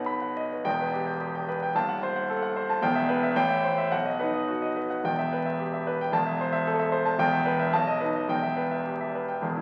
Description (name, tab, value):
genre	classical, virtuoso piano study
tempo	101-114 BPM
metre	2/4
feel	rubato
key	E minor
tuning	A4 = 440 Hz
part	warm concert grand piano	solo	0.0-9.6 s	D#1 to B5	-27 LUFS	equal	none
room	wet recital hall reverb, RT60 1.3 s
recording	very old 78 rpm record, vinyl crackle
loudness	-27 LUFS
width	mono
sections	0.7-9.4 A section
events	none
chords	0.0 B; 0.7 Em; 1.8 D#dim7; 2.8 Em; 3.4 Am7; 3.9 B; 5.0 Em; 6.1 Am/E; 7.2 Em; 7.7 B7; 8.3 Em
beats	0.07 | 0.65 1.21 | 1.76 2.30 | 2.82 3.36 | 3.92 4.48 | 5.05 5.60 | 6.14 6.67 | 7.20 7.73 | 8.29 8.87 | 9.44